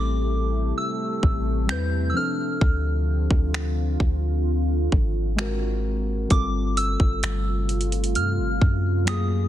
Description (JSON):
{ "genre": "contemporary R&B", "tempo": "65 BPM", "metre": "4/4", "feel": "straight", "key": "unclear", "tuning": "A4 = 441 Hz", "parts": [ { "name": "soft synth bell", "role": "melody", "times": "0.0-9.5 s", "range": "D6 to G6", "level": "-30 LUFS", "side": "right 1 dB", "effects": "chorus, ping-pong delay" }, { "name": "muted felt-like synth keys", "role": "accompaniment", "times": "0.0-9.5 s", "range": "F3 to B4", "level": "-30 LUFS", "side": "left 3 dB", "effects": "chorus" }, { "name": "deep dark ambient pad", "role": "sustained chords", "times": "0.0-9.5 s", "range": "A#2 to G4", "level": "-32 LUFS", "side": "right 1 dB", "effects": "chorus, built-in reverb" }, { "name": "soft 808-style bass", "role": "bass", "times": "0.0-9.5 s", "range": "G1 to G2", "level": "-24 LUFS", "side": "equal", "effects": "none" }, { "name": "trap drum kit", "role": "drums", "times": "1.2-9.3 s", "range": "finger snaps, hi-hat, kick drum", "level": "-22 LUFS", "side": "equal", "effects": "vintage 12-bit sampler grit, soft clipping on snare" } ], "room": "little or no reverb", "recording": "dense, heavily limited modern master", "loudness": "-21 LUFS", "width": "side -12 dB against mid", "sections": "0.0-9.5 A section", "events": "none", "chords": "0.0 Am7; 2.2 Dm7; 5.4 G#9; 6.3 G9sus4" }